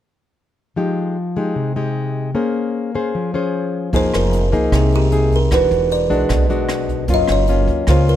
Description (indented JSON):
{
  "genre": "bossa nova",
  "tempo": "152 BPM",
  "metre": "4/4",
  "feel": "straight",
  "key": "F minor",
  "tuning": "A4 = 444 Hz",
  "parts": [
    { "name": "nylon-string guitar", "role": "accompaniment", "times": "0.8-8.2 s", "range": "B2 to C5", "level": "-18 LUFS", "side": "left 2 dB", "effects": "none" },
    { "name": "upright bass", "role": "bass", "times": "3.9-8.2 s", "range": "E1 to Db2", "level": "-19 LUFS", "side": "right 1 dB", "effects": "none" },
    { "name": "jazz brush drum kit", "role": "drums", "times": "3.9-8.2 s", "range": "hi-hat, kick drum, rim click", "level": "-23 LUFS", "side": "right 1 dB", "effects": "none" },
    { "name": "buzzing kalimba", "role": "melody", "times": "4.0-8.2 s", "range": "G4 to Eb5", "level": "-19 LUFS", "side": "right 1 dB", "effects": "none" }
  ],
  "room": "light reverb",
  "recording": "none",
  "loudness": "-15 LUFS",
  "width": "side -11 dB against mid",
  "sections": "0.8-3.9 A section; 3.9-8.2 B section",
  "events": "none",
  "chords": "0.8 Fm9; 2.3 Bbm9; 3.9 Fm11; 5.5 E9; 7.1 Gbmaj7"
}